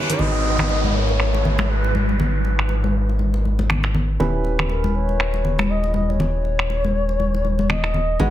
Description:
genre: afro house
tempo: 120 BPM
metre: 4/4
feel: swing 57% on 16ths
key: G# minor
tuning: A4 = 440 Hz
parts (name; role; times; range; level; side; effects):
- mellow bass bansuri; melody; 0.0-8.3 s; A#4 to F#5; -26 LUFS; left 2 dB; digital delay
- felt-muted upright piano; stabs; 0.0-8.3 s; C#4 to C#5; -30 LUFS; right 4 dB; digital delay
- nylon-string guitar; arpeggios; 0.1-0.2, 8.2-8.3 s; D#3 to G#3; -29 LUFS; right 1 dB; vintage 12-bit sampler grit, digital delay
- afro-pop drum kit; drums; 0.1-7.9 s; crash cymbal, finger snaps, hi-hat, shaker, toms; -25 LUFS; right 1 dB; low-pass filter on perc, low-pass filter on hats, low-pass filter on toms, soft clipping on snare, low-pass filter on snare, low-pass filter on cymbals
- dark detuned saw bass; bass; 0.2-8.3 s; D#1 to G#1; -21 LUFS; equal; none
- congas; percussion; 0.2-8.3 s; none; -25 LUFS; left 2 dB; none
- downlifter; sound effects; 0.2-4.2 s; none; -26 LUFS; equal; none
room: light reverb, small room ambience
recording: dense, heavily limited modern master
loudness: -18 LUFS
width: side -12 dB against mid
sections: 0.2-8.3 A section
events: break 0.0; drum fill 0.0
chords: 0.2 G#m7; 4.2 D#7b9b13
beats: | 0.20 0.70 1.20 1.70 | 2.20 2.70 3.20 3.70 | 4.20 4.70 5.20 5.70 | 6.20 6.70 7.20 7.70 | 8.20

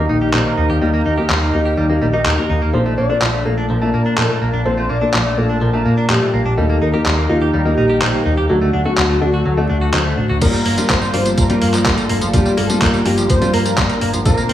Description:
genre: italo disco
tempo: 125 BPM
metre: 4/4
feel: straight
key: G minor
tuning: A4 = 437 Hz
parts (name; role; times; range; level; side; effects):
- warm analog pad; sustained chords; 0.0-14.5 s; D3 to A5; -22 LUFS; equal; chorus, tremolo
- direct-recorded clean electric guitar; arpeggios; 0.0-14.5 s; F3 to Bb4; -24 LUFS; right 1 dB; wide subtle chorus, tape echo
- dark grand piano; stabs; 0.0-14.4 s; G3 to A5; -21 LUFS; left 2 dB; low-pass filter
- picked electric bass with an envelope filter; bass; 0.0-14.5 s; G1 to Bb2; -19 LUFS; equal; tape echo
- detuned 8-bit digital drum machine; drums; 0.3-14.5 s; crash cymbal, handclaps, hi-hat, tambourine; -20 LUFS; equal; low-pass filter on cymbals, studio ambience, low-pass filter on snare, low-pass filter on hats, low-pass filter on perc, gated reverb
- wide unison lead; melody; 2.7-14.5 s; F4 to D5; -20 LUFS; equal; cassette tape, tape echo
- electronic kick drum; drums; 10.4-14.4 s; none; -18 LUFS; equal; studio ambience
room: light reverb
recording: vinyl crackle, small room ambience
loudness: -13 LUFS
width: side -12 dB against mid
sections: 0.0-10.4 A section; 10.4-14.5 B section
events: none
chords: 0.0 Eb; 2.7 Bbmaj7; 6.6 Eb; 8.5 D; 10.4 Gm7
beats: 0.34 | 0.81 1.29 1.77 2.25 | 2.73 3.21 3.69 4.17 | 4.66 5.13 5.62 6.09 | 6.58 7.05 7.54 8.02 | 8.49 8.97 9.46 9.94 | 10.41 10.89 11.38 11.86 | 12.34 12.81 13.29 13.78 | 14.26

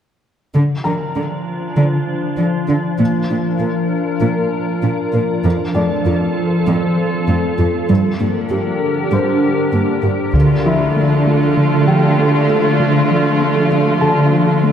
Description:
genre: cinematic, hybrid orchestral and electronic film score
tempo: 98 BPM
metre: 4/4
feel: straight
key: D minor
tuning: A4 = 435 Hz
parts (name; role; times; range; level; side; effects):
- glassy FM pad; sustained chords; 1.1-14.7 s; D3 to Bb4; -17 LUFS; left 1 dB; ensemble chorus, built-in reverb
- warbly dusty pluck; arpeggios; 0.5-14.7 s; D3 to Bb4; -20 LUFS; equal; chorus, tape echo
- warm symphonic cello section; bass; 0.5-14.7 s; F2 to D3; -19 LUFS; right 2 dB; none
- felt-muted upright piano; texture; 0.8-14.7 s; D4 to Bb5; -25 LUFS; left 2 dB; tape echo
- warm symphonic viola section; accompaniment; 10.3-14.7 s; A3 to F4; -18 LUFS; equal; none
- taiko ensemble; drums; 10.3-11.5 s; none; -20 LUFS; left 1 dB; none
room: wet concert hall reverb, RT60 2.2 s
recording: none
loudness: -13 LUFS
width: side -8 dB against mid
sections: 0.5-10.3 A section; 10.3-14.7 B section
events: build-up 10.3-14.7; filter sweep 10.3-14.7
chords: 0.5 Dm; 3.0 Bb; 5.4 F; 7.9 Gm; 10.3 Dm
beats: | 0.55 1.16 1.77 2.39 | 3.00 3.61 4.22 4.83 | 5.45 6.06 6.67 7.28 | 7.90 8.51 9.12 9.73 | 10.35 10.96 11.57 12.18 | 12.79 13.41 14.02 14.63

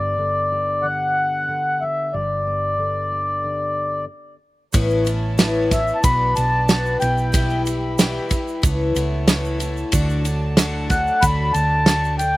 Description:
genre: indie folk with a building arrangement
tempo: 92 BPM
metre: 4/4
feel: straight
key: unclear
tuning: A4 = 440 Hz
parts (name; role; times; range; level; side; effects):
- mellow accordion; melody; 0.0-12.4 s; D5 to B5; -20 LUFS; left 1 dB; none
- fingerpicked steel-string acoustic guitar; accompaniment; 0.0-4.1 s; G2 to G4; -31 LUFS; left 2 dB; slapback echo
- hollow-body short-scale fingered electric bass; bass; 0.0-12.4 s; G1 to D2; -23 LUFS; right 1 dB; none
- picked twelve-string acoustic guitar; accompaniment; 4.7-12.4 s; A2 to G4; -25 LUFS; left 3 dB; slapback echo
- warm brass ensemble; sustained chords; 4.7-12.4 s; F#3 to B5; -31 LUFS; right 2 dB; none
- loose indie drum kit; drums; 4.7-12.3 s; kick drum, ride cymbal, snare drum; -18 LUFS; right 1 dB; none
- tube shaker; percussion; 4.7-12.4 s; none; -32 LUFS; right 13 dB; none
room: little or no reverb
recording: recorded outdoors, with no room sound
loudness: -17 LUFS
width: side -18 dB against mid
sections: 0.0-4.7 A section; 4.7-12.4 B section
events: stop 4.1-4.7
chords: 0.0 G; 4.7 Aadd9; 6.0 Bm; 7.0 Em/B; 8.6 Aadd9/C#; 9.9 D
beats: 0.17 0.83 1.48 | 2.13 2.79 3.44 4.09 | 4.74 5.39 6.04 6.69 | 7.34 7.99 8.64 9.29 | 9.93 10.58 11.23 11.88

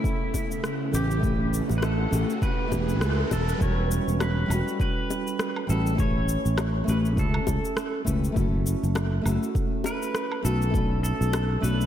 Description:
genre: sunset chillout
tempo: 101 BPM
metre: 4/4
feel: swing 57% on 16ths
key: E dorian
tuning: A4 = 439 Hz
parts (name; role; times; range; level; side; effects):
- pedal steel guitar; melody; 0.0-11.9 s; E4 to C#5; -33 LUFS; left 1 dB; diffuse ambient delay
- nylon-string guitar; accompaniment; 0.0-11.9 s; G3 to B4; -30 LUFS; moving between left 3 dB and right 4 dB; auto-pan, diffuse ambient delay
- soft string machine; sustained chords; 0.0-3.6 s; C#3 to F#5; -34 LUFS; right 1 dB; ensemble chorus
- electronic kick drum; drums; 0.0-10.9 s; none; -28 LUFS; equal; none
- electronic shaker, rim click and woodblock; drums; 0.0-11.9 s; none; -34 LUFS; equal; none
- riser; sound effects; 0.5-3.6 s; none; -36 LUFS; right 2 dB; none
- bongos; percussion; 0.3-11.5 s; none; -36 LUFS; left 6 dB; none
- sustaining fretless electric bass; bass; 0.9-11.9 s; E1 to C#2; -25 LUFS; equal; none
room: moderate lush hall reverb, RT60 1.9 s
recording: dreamy mix soaked in reverb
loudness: -23 LUFS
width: side -10 dB against mid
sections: 0.0-3.6 A section; 3.6-11.9 B section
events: riser 0.5-3.6; band accent 3.0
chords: 0.0 Em69; 6.0 A7; 8.4 F#m7; 10.7 Bm7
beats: 0.05 0.64 | 1.23 1.83 2.42 3.02 | 3.61 4.20 4.80 5.39 | 5.99 6.58 7.17 7.77 | 8.36 8.96 9.55 10.14 | 10.74 11.33

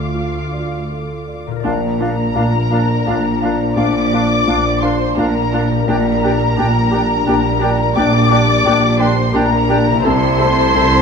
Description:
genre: cinematic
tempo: 85 BPM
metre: 3/4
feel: rubato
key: unclear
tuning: A4 = 440 Hz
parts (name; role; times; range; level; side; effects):
- muted symphonic violin section; melody; 0.0-11.0 s; Bb5 to D6; -20 LUFS; left 3 dB; none
- muted symphonic violin section; second line; 0.0-11.0 s; Bb4 to F5; -23 LUFS; left 1 dB; none
- dark concert grand piano; accompaniment; 0.0-11.0 s; Bb1 to D5; -20 LUFS; left 1 dB; none
- muted symphonic viola section; accompaniment; 0.0-10.8 s; D4 to A4; -25 LUFS; right 2 dB; none
- concert harp; arpeggios; 0.0-11.0 s; Bb2 to D5; -26 LUFS; left 8 dB; none
- muted symphonic cello section; bass; 0.0-11.0 s; D2 to C3; -23 LUFS; right 3 dB; none
- muted symphonic double bass section; bass; 0.0-11.0 s; Bb1 to D2; -22 LUFS; right 5 dB; none
- clear clarinet; second line; 1.6-11.0 s; D4 to E4; -26 LUFS; left 1 dB; none
- concert flute; second line; 1.6-11.0 s; F5 to A5; -25 LUFS; right 1 dB; none
- mellow French horn section; sustained chords; 1.6-11.0 s; F3 to D4; -22 LUFS; left 4 dB; none
room: moderate recital hall reverb, RT60 1.5 s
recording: none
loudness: -13 LUFS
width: side -6 dB against mid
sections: 0.0-1.6 A section; 1.6-11.0 B section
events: none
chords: 0.0 Dm; 1.6 Bb; 5.9 Gm/Bb; 10.1 Am/C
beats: 0.15 0.90 | 1.64 2.36 3.07 | 3.77 4.48 5.18 | 5.88 6.58 7.27 | 7.97 8.66 9.35 | 10.05 10.76

